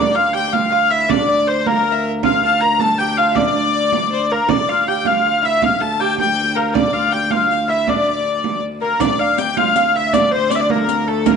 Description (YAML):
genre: medieval dance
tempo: 106 BPM (dotted quarters)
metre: 6/8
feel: straight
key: D minor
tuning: A4 = 440 Hz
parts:
  - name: rich hurdy-gurdy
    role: melody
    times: 0.0-11.4 s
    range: A4 to Bb5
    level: -17 LUFS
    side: left 3 dB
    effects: none
  - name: clear fiddle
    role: second line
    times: 0.0-11.4 s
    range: A4 to Bb5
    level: -24 LUFS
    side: left 10 dB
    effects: none
  - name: lute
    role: second line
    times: 0.0-11.4 s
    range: A3 to Bb4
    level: -22 LUFS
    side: right 9 dB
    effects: none
  - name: clear viola da gamba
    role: drone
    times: 0.0-11.4 s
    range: D2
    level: -26 LUFS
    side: left 1 dB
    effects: none
  - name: frame drum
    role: percussion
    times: 0.3-11.4 s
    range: none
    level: -21 LUFS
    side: right 10 dB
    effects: none
  - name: riq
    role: percussion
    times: 9.0-11.4 s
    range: none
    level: -27 LUFS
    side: left 12 dB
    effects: none
room: wet spring reverb, RT60 1.6 s, small room ambience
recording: 1960s-style stereo with parts hard left and right, nothing above 10.8 kHz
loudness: -14 LUFS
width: side -6 dB against mid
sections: 0.0-9.0 A section; 9.0-11.4 A section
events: none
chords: none